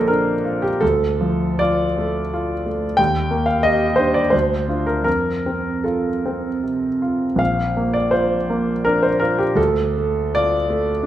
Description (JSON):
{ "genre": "classical, romantic character piece for solo piano", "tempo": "73-93 BPM", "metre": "3/4", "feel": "rubato", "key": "Bb major", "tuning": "A4 = 439 Hz", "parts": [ { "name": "warm concert grand piano", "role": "solo", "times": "0.0-11.1 s", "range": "Bb1 to G5", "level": "-17 LUFS", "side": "equal", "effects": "none" } ], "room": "moderate recital hall reverb, RT60 1.5 s", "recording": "none", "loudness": "-17 LUFS", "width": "side -12 dB against mid", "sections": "0.0-11.1 A section", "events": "none", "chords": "0.0 Bb; 0.8 Dm; 3.0 Ebmaj7; 4.3 Dm7; 5.1 F; 7.4 Bb; 9.6 Dm", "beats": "0.10 | 0.82 1.61 2.33 | 2.98 3.65 4.33 | 5.06 5.85 6.63 | 7.40 8.13 8.86 | 9.58 10.35 11.02" }